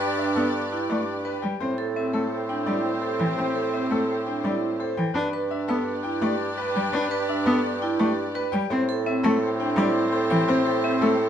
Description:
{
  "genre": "classical, minimalist pattern music",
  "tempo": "169 BPM",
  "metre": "5/4",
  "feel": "straight",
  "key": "unclear",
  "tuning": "A4 = 442 Hz",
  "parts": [
    { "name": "bright grand piano", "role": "melody", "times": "0.0-11.2 s", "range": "A4 to G5", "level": "-31 LUFS", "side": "left 8 dB", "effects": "none" },
    { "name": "mellow oboe", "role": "second line", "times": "0.0-11.3 s", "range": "C4 to D4", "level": "-32 LUFS", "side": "right 3 dB", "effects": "none" },
    { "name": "rich symphonic string section", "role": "sustained chords", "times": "0.0-11.3 s", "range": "G4 to D5", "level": "-33 LUFS", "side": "left 3 dB", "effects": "none" },
    { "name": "vibraphone with hard mallets", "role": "arpeggios", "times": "0.0-11.2 s", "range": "C4 to B4", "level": "-28 LUFS", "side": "right 5 dB", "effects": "none" },
    { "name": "warm bassoon", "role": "bass", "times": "0.0-11.3 s", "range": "G2 to A2", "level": "-29 LUFS", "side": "equal", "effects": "none" },
    { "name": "warm cello", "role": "accompaniment", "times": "0.4-11.1 s", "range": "E3 to D4", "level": "-26 LUFS", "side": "equal", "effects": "none" }
  ],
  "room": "moderate large studio reverb, RT60 1.3 s",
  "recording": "dark, warm production",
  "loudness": "-22 LUFS",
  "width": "side -9 dB against mid",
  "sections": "0.0-11.3 A section",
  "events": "none",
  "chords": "0.0 Em7/G; 1.6 Am7; 5.2 Em7/G; 8.7 Am7"
}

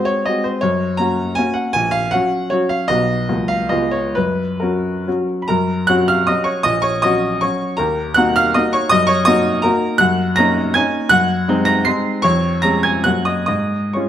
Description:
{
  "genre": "classical, romantic triple-time dance for piano with dotted rhythms",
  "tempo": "125-173 BPM",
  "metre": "3/4",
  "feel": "rubato",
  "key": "F# major, Db major from 10.0 s",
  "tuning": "A4 = 435 Hz",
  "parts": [
    { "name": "warm baby grand piano", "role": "solo", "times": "0.0-14.1 s", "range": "A#1 to C7", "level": "-14 LUFS", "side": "equal", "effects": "none" }
  ],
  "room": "wet recital hall reverb, RT60 1.4 s",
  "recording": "none",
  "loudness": "-14 LUFS",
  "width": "side -10 dB against mid",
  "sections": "0.0-5.5 A section; 5.5-14.1 B section",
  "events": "none",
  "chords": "0.0 Ab7; 0.6 F#; 1.7 F#/A#; 2.9 B; 3.3 F#/C#; 3.7 C#7; 4.2 F#; 6.7 F#/A#; 7.8 D#m; 8.9 D#m/F#; 10.0 Ebm7/Gb; 11.1 Ab7/Gb; 12.2 Db/F; 13.1 Gb; 13.5 Db/Ab"
}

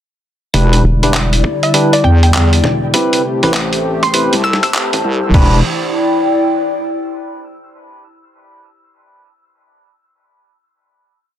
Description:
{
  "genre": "glitch hop",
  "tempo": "100 BPM",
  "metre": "4/4",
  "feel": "swing 64% on 16ths",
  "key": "E minor",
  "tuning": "A4 = 440 Hz",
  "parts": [
    { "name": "warm analog pad", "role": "sustained chords", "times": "0.5-5.6 s", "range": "C3 to G4", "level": "-21 LUFS", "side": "left 1 dB", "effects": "chorus, sidechain pumping" },
    { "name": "barky tine electric piano", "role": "stabs", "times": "0.5-5.6 s", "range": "C4 to B4", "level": "-19 LUFS", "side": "equal", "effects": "lush chorus, sidechain pumping, dub echo" },
    { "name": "wobble bass", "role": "bass", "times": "0.5-5.6 s", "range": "E1 to E2", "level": "-11 LUFS", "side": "equal", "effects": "chorus" },
    { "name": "boom bap sampler-style drum kit", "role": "drums", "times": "0.5-5.5 s", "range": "crash cymbal, kick drum", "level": "-17 LUFS", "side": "equal", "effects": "high-pass filter on kick, small room ambience, high-pass filter on cymbals" },
    { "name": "boom bap sampler-style drum kit", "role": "drums", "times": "0.5-5.0 s", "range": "handclaps, hi-hat, snare drum", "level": "-17 LUFS", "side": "right 1 dB", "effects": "small room ambience" },
    { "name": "warbly tape-like pad", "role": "texture", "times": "0.5-7.7 s", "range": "E4 to A5", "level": "-18 LUFS", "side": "left 1 dB", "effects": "chorus, built-in reverb, sidechain pumping" },
    { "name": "rubbery square bass", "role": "bass", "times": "0.8-5.0 s", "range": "E1 to A1", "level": "-16 LUFS", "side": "equal", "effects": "none" },
    { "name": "woody wave-folded pluck", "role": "melody", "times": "1.6-4.7 s", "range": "D5 to E6", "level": "-20 LUFS", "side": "equal", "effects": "chorus, dub echo" }
  ],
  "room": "moderate plate reverb, RT60 1.7 s",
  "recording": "dense, heavily limited modern master, high-pass filter",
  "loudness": "-11 LUFS",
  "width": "side -11 dB against mid",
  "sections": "0.5-5.3 build; 5.3-7.7 final chord",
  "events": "build-up 0.5-5.3; filter sweep 0.5-5.3",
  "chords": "0.5 Em7; 2.9 Am7; 5.3 Em7"
}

